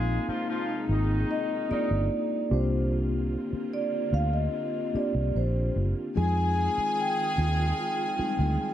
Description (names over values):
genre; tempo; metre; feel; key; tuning
soul; 74 BPM; 4/4; straight; F dorian; A4 = 440 Hz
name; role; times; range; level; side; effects
vibraphone with soft mallets; melody; 0.0-8.7 s; C5 to Ab5; -31 LUFS; equal; none
mellow tine electric piano; accompaniment; 0.0-8.7 s; G3 to Ab4; -32 LUFS; left 2 dB; slow stereo tremolo
dark studio string section; sustained chords; 0.0-8.7 s; C3 to F4; -36 LUFS; right 2 dB; none
clear horn section; stabs; 0.0-2.0 s; Eb3 to Ab4; -35 LUFS; equal; none
vintage muted fingered electric bass; bass; 0.0-8.6 s; Gb1 to F2; -26 LUFS; equal; none
warm studio string section; second line; 6.2-8.7 s; Ab4 to Ab5; -33 LUFS; left 2 dB; none
room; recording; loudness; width
light reverb, studio reverb; dark, warm production; -25 LUFS; side -11 dB against mid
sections
0.0-6.2 A section; 6.2-8.7 B section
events
vibraphone solo 0.0-6.2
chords
0.0 Bb9sus4; 2.5 C9sus4; 6.2 Fm9